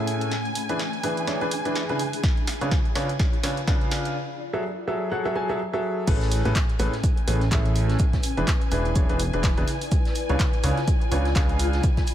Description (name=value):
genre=piano house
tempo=125 BPM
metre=4/4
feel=swing 58% on 16ths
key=unclear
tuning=A4 = 440 Hz
part: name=dark symphonic violin section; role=sustained chords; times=0.0-12.1 s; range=G#5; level=-35 LUFS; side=right 1 dB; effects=sidechain pumping
part: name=clear baby grand piano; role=riff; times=0.0-11.8 s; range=A2 to G#5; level=-27 LUFS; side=equal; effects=sidechain pumping, low-pass filter, ping-pong delay
part: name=granular cloud pad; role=texture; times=0.0-12.1 s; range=A3 to B5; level=-33 LUFS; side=left 1 dB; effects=built-in reverb, sidechain pumping
part: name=punchy analog drum machine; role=drums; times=0.1-12.1 s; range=crash cymbal, handclaps, hi-hat, snare drum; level=-32 LUFS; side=right 1 dB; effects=high-pass filter on snare, high-pass filter on hats, high-pass filter on cymbals, high-pass filter on room
part: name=electronic kick drum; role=drums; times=2.2-12.1 s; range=none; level=-23 LUFS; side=equal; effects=none
part: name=fat analog bass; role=bass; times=6.1-11.8 s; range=E1 to C#2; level=-24 LUFS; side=equal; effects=sidechain pumping
part: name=shaker and snare drum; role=drums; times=6.1-12.1 s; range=none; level=-42 LUFS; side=right 1 dB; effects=none
room=light reverb, small room ambience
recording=none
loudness=-21 LUFS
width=side -11 dB against mid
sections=0.0-6.1 A section; 6.1-12.1 B section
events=build-up 0.0-6.1; drum fill 0.0-4.2; break 4.2-6.1; drop 6.1-12.1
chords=0.3 E7; 2.0 C#7b9; 4.2 F#m9; 6.1 Amaj9; 8.0 E7; 9.7 C#7b9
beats=| 0.32 0.80 1.27 1.75 | 2.23 2.71 3.19 3.67 | 4.16 4.63 5.12 5.59 | 6.08 6.55 7.04 7.51 | 8.00 8.47 8.96 9.44 | 9.91 10.39 10.88 11.36 | 11.84